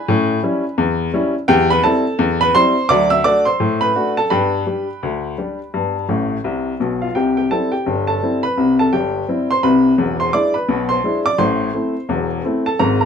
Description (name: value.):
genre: ragtime piano.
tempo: 85 BPM.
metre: 2/4.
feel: swing 59% on 16ths.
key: C major.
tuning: A4 = 441 Hz.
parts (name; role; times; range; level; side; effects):
clear upright piano; solo; 0.0-13.1 s; E1 to E6; -15 LUFS; left 1 dB; none.
room: moderate club reverb, RT60 0.5 s.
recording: dark, warm production.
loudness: -15 LUFS.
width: side -7 dB against mid.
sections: 0.0-7.2 A section; 7.2-13.1 B section.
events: upright piano fill 6.1-7.2.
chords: 0.1 A7; 1.5 C/E; 2.9 D7; 4.3 G; 7.2 C; 10.0 E7; 11.4 Am.